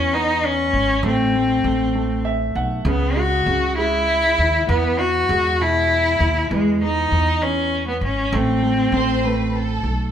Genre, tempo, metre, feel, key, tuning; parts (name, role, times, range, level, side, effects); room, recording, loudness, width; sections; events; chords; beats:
six-eight pop ballad; 66 BPM (dotted quarters); 6/8; straight; A4 = 440 Hz
rich cello; melody; 0.0-9.6 s; G#3 to F#4; -19 LUFS; left 1 dB
clear concert grand piano; accompaniment; 0.0-10.1 s; B2 to F#5; -26 LUFS; right 4 dB
upright bass; bass; 0.0-10.1 s; G#1 to E2; -23 LUFS; equal
warm studio violin section; second line; 8.9-10.1 s; A4 to C5; -25 LUFS; equal
wet large studio reverb, RT60 1.0 s; band playing live in one room; -17 LUFS; side -9 dB against mid
0.0-10.1 A section
grand piano fill 2.0-2.9
0.0 C#m7/E; 1.0 Am; 2.9 C#m; 4.7 E; 6.5 C#madd9; 8.3 Am
0.13 | 1.04 1.95 | 2.86 3.77 | 4.68 5.59 | 6.51 7.42 | 8.33 9.24